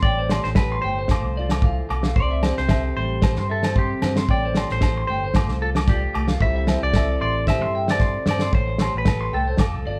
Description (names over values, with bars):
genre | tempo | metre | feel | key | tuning
highlife guitar band | 113 BPM | 4/4 | swing 53% on 16ths | C major | A4 = 440 Hz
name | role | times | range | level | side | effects
clean electric guitar | melody | 0.0-10.0 s | G4 to E5 | -29 LUFS | equal | none
picked steel-string acoustic guitar | accompaniment | 0.0-10.0 s | A2 to A4 | -33 LUFS | equal | none
clean electric guitar | arpeggios | 0.0-10.0 s | C5 to D6 | -32 LUFS | equal | none
fingered electric bass | bass | 0.0-10.0 s | F1 to G2 | -28 LUFS | equal | none
damped 70s drum kit | drums | 0.0-9.7 s | kick drum, snare drum | -24 LUFS | equal | none
agogo bells | percussion | 0.3-9.7 s | none | -36 LUFS | equal | none
room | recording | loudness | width
moderate large studio reverb, RT60 0.9 s | band playing live in one room | -21 LUFS | mono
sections
0.0-10.0 A section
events
none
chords
0.0 Am7; 1.1 F6; 2.2 C6; 4.3 Am7; 5.4 F6; 6.4 C6; 8.5 Am7